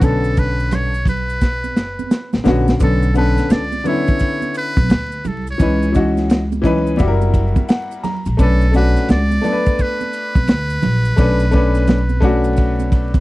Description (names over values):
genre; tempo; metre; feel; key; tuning
hip hop, jazz-hop; 86 BPM; 4/4; swing 64% on 16ths; B minor; A4 = 440 Hz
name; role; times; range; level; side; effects
trumpet with metal mute; melody; 0.0-13.2 s; A4 to D5; -24 LUFS; right 1 dB; none
clear grand piano; accompaniment; 0.0-13.1 s; D3 to A#5; -19 LUFS; left 2 dB; none
upright bass; bass; 0.0-13.2 s; F#1 to D2; -17 LUFS; equal; none
crunchy breakbeat drum kit; drums; 0.0-13.2 s; hi-hat, kick drum, ride cymbal, rim click, snare drum; -16 LUFS; equal; none
maracas and congas; percussion; 0.0-13.2 s; none; -28 LUFS; right 6 dB; none
room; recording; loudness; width
little or no reverb; dry, close 1970s-style studio recording, vinyl crackle; -14 LUFS; side -18 dB against mid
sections
0.0-2.8 A section; 2.8-13.2 B section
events
drum fill 1.4-2.8; grand piano fill 7.3-8.4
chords
0.0 Bm9; 5.6 C#m9; 7.0 F#7b9; 8.4 Bm9